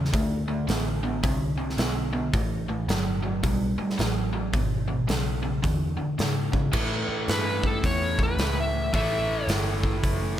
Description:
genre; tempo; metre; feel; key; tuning
blues rock power trio and southern rock; 109 BPM; 4/4; swing 63% on 8ths; A mixolydian; A4 = 440 Hz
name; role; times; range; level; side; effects
overdriven electric guitar; riff; 0.0-10.4 s; E2 to C4; -28 LUFS; equal; none
vintage muted picked electric bass; bass; 0.0-10.4 s; F#1 to A2; -29 LUFS; equal; none
big rock drum kit; drums; 0.1-10.2 s; crash cymbal, hi-hat, kick drum, snare drum; -28 LUFS; equal; none
overdriven slide guitar; melody; 7.3-9.5 s; A4 to E5; -28 LUFS; left 1 dB; none
room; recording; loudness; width
light reverb; none; -23 LUFS; side -11 dB against mid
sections
0.0-6.7 A section; 6.7-10.4 B section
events
electric slide guitar solo 6.7-10.4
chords
0.1 D5; 2.3 A5; 4.5 E7; 6.7 A7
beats
| 0.14 0.69 1.24 1.79 | 2.34 2.89 3.44 3.99 | 4.54 5.09 5.64 6.19 | 6.74 7.29 7.84 8.39 | 8.94 9.48 10.03

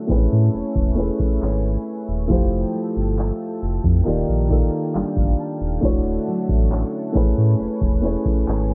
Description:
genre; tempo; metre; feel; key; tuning
contemporary R&B; 68 BPM; 4/4; straight; unclear; A4 = 440 Hz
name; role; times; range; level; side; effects
clear concert grand piano; accompaniment; 0.0-8.7 s; A3 to A5; -26 LUFS; equal; none
lush unison pad; sustained chords; 0.0-8.7 s; A4 to E6; -39 LUFS; equal; chorus
picked steel-string acoustic guitar; arpeggios; 0.0-8.7 s; D3 to B4; -31 LUFS; equal; tape echo
sub bass with octave; bass; 0.1-8.7 s; D1 to A2; -23 LUFS; equal; none
booming analog drum machine; drums; 0.1-8.7 s; handclaps, hi-hat, kick drum; -22 LUFS; equal; none
room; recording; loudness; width
digital ambience; low-pass filter; -20 LUFS; mono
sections
0.0-8.7 A section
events
filter sweep 0.0-8.7; grand piano fill 4.1-5.8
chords
0.1 Amaj9; 2.3 Fmaj9; 4.1 Ebmaj9; 5.8 Dmaj9; 7.2 Amaj9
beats
0.54 1.42 | 2.30 3.18 4.06 4.95 | 5.83 6.71 7.59 8.48

